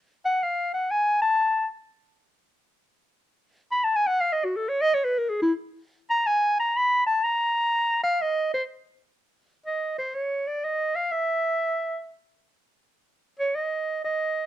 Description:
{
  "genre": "jazz",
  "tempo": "123 BPM",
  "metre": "4/4",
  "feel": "swing 67% on 8ths",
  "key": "unclear",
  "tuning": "A4 = 442 Hz",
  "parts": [
    { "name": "mellow clarinet", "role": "solo", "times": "0.3-14.5 s", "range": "Fb4 to Cb6", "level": "-22 LUFS", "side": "equal", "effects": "none" }
  ],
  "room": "light reverb",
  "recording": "close, detailed microphones",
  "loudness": "-23 LUFS",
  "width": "side -13 dB against mid",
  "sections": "0.0-9.2 A section; 9.2-14.5 B section",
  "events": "clarinet solo 0.0-9.2",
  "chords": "none"
}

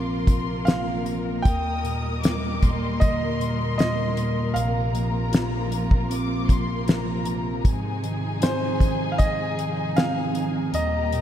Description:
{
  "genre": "pop ballad",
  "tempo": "78 BPM",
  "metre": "4/4",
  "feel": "straight",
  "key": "unclear",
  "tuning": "A4 = 440 Hz",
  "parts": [
    { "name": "bright concert grand piano", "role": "melody", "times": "0.0-11.2 s", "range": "C5 to G5", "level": "-29 LUFS", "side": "right 1 dB", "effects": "ping-pong delay" },
    { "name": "warm studio violin section", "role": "second line", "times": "0.0-11.2 s", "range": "Ab5 to Eb6", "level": "-34 LUFS", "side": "left 3 dB", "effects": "none" },
    { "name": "mellow tine electric piano", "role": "accompaniment", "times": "0.0-11.2 s", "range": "Bb1 to F4", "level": "-27 LUFS", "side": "right 1 dB", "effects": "analog chorus" },
    { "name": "muted studio string section", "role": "sustained chords", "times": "0.0-11.2 s", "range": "Bb2 to Eb5", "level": "-30 LUFS", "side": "left 1 dB", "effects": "none" },
    { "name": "damped 70s drum kit", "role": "drums", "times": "0.3-11.2 s", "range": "hi-hat, kick drum, snare drum", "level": "-23 LUFS", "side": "equal", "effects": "none" }
  ],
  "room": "moderate lush hall reverb, RT60 2.9 s",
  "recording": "dreamy mix soaked in reverb",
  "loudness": "-21 LUFS",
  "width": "side -10 dB against mid",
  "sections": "0.0-11.2 A section",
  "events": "none",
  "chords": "0.0 Bbsus2; 1.5 Ebmaj7; 4.6 Bbsus2; 7.6 Ab6"
}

